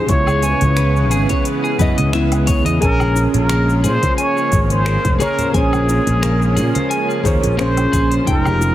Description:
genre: sunset chillout.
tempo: 88 BPM.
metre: 4/4.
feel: swing 54% on 16ths.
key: Bb minor.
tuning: A4 = 440 Hz.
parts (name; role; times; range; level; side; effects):
trumpet with plunger mute; melody; 0.0-8.7 s; Ab4 to Db5; -22 LUFS; equal; vintage 12-bit sampler grit, tape echo.
nylon-string guitar; accompaniment; 0.0-8.7 s; Db3 to G5; -21 LUFS; equal; auto-pan, vintage 12-bit sampler grit, tape echo.
lush unison pad; sustained chords; 0.0-8.7 s; Db3 to Eb5; -22 LUFS; right 2 dB; chorus, vintage 12-bit sampler grit.
electric guitar at the edge of break-up; arpeggios; 0.0-8.6 s; G4 to Ab5; -24 LUFS; left 2 dB; spring reverb, tape echo.
fretless electric bass; bass; 0.1-8.7 s; F1 to Bb2; -17 LUFS; equal; tube saturation.
deep house drum kit; drums; 0.1-8.7 s; cabasa, finger snaps, hi-hat, woodblock; -28 LUFS; left 3 dB; none.
electronic kick drum; drums; 0.1-8.4 s; none; -19 LUFS; equal; none.
bongos and congas; percussion; 0.3-8.7 s; none; -27 LUFS; right 1 dB; none.
room: light reverb.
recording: heavily compressed radio sound, multiband compression.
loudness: -13 LUFS.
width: side -13 dB against mid.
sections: 0.0-8.7 A section.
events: none.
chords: 0.1 Dbm9; 2.8 Bbm9.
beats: | 0.09 0.77 1.46 2.14 | 2.82 3.50 4.18 4.87 | 5.55 6.23 6.91 7.59 | 8.27.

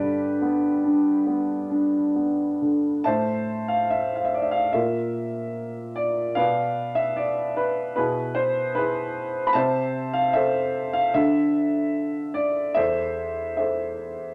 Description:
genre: classical, lyrical solo piano.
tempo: 74 BPM.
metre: 4/4.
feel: uneven beats, rubato.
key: A minor from 3.1 s.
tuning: A4 = 439 Hz.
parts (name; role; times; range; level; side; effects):
dark grand piano; solo; 0.0-14.3 s; E2 to B5; -24 LUFS; equal; none.
room: wet studio reverb, RT60 0.5 s.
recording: none.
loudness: -24 LUFS.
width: mono.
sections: 0.0-3.1 A section; 3.1-14.3 B section.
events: none.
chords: 0.0 G; 3.1 Am; 4.7 N.C.; 6.4 Bdim; 8.0 E/B; 9.6 Am/C; 11.2 D5; 12.8 Am/E.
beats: 0.42 1.25 2.15 | 3.05 3.90 4.74 5.56 | 6.37 7.18 7.97 8.75 | 9.55 10.35 11.15 11.95 | 12.76 13.58.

